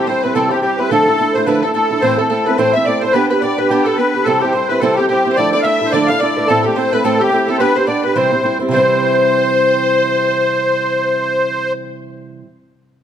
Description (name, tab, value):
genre	celtic folk, Celtic reel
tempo	215 BPM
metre	4/4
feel	swing 58% on 8ths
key	C major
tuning	A4 = 440 Hz
part	musette accordion	melody	0.0-11.7 s	G4 to F5	-16 LUFS	equal	none
part	dark fiddle	second line	0.0-11.7 s	G4 to F5	-20 LUFS	left 8 dB	none
part	mandolin	second line	0.0-12.4 s	G4 to F5	-23 LUFS	equal	none
part	fingerpicked swing-style acoustic guitar	accompaniment	0.0-12.5 s	A2 to C5	-17 LUFS	right 3 dB	none
room	moderate recital hall reverb, RT60 1.6 s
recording	close, detailed microphones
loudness	-12 LUFS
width	side -9 dB against mid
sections	0.0-8.7 A section; 8.7-11.0 B section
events	none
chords	0.0 C; 0.9 Dmadd9; 2.0 Am; 3.1 G/B; 4.3 C; 5.4 Dmadd9; 6.5 Am; 7.6 G/B; 8.2 C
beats	0.07 0.35 0.63 | 0.91 1.19 1.47 1.75 | 2.03 2.31 2.59 2.87 | 3.15 3.42 3.70 3.98 | 4.26 4.54 4.82 5.10 | 5.38 5.65 5.93 6.21 | 6.49 6.77 7.05 7.33 | 7.61 7.89 8.17 8.45 | 8.72 9.01 9.28 9.56 | 9.84 10.12 10.40 10.68